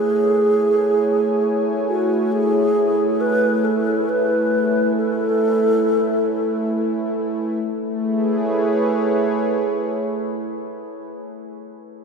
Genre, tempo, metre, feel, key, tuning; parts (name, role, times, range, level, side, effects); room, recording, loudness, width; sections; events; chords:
ambient; free time; A major; A4 = 440 Hz
mellow hollow alto flute; melody; 0.0-6.7 s; F#4 to B4; -20 LUFS; equal; ping-pong delay
warm analog pad; sustained chords; 0.0-11.0 s; A3 to G#5; -21 LUFS; right 1 dB; chorus
wet cathedral reverb, RT60 7.0 s; in a vast, echoing space; -17 LUFS; side -5 dB against mid
0.0-7.6 A section; 7.6-10.3 B section
filter sweep on analog synth pad 0.0-7.6
0.0 Amaj7